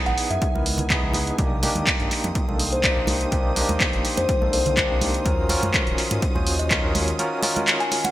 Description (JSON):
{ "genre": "deep house", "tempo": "124 BPM", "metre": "4/4", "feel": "swing 53% on 16ths", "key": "unclear", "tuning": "A4 = 441 Hz", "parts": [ { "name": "overdriven tine electric piano", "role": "stabs", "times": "0.0-8.1 s", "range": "Bb3 to C5", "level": "-26 LUFS", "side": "equal", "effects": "fast tremolo, sidechain pumping, digital delay" }, { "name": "string machine, violins", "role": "texture", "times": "0.0-8.1 s", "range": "Eb3 to Eb6", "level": "-38 LUFS", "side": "left 1 dB", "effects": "ensemble chorus" }, { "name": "kalimba", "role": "melody", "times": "0.1-8.1 s", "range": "C5 to Ab5", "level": "-28 LUFS", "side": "left 2 dB", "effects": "digital delay" }, { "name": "smooth synth bass", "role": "bass", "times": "0.1-7.1 s", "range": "Eb1 to Ab2", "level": "-28 LUFS", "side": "equal", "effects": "sidechain pumping" }, { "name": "punchy analog drum machine", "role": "drums", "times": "0.1-8.1 s", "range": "handclaps, hi-hat", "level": "-23 LUFS", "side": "equal", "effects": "gated reverb" }, { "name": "electronic kick drum", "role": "drums", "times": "0.4-6.8 s", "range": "none", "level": "-25 LUFS", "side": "equal", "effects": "none" }, { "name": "congas", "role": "percussion", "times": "0.6-8.1 s", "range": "none", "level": "-32 LUFS", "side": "right 3 dB", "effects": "none" }, { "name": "airy breathy pad", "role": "sustained chords", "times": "1.4-8.1 s", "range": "Eb5 to Eb6", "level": "-36 LUFS", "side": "right 2 dB", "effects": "chorus, sidechain pumping" } ], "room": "light reverb", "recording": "bright 1980s-style digital production", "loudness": "-19 LUFS", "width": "side -14 dB against mid", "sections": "0.0-8.1 A section", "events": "none", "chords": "0.0 Dbm9; 1.4 Cm9; 5.3 Ebm9", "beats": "0.42 0.90 | 1.39 1.87 2.35 2.84 | 3.32 3.81 4.29 4.77 | 5.26 5.74 6.22 6.71 | 7.19 7.68" }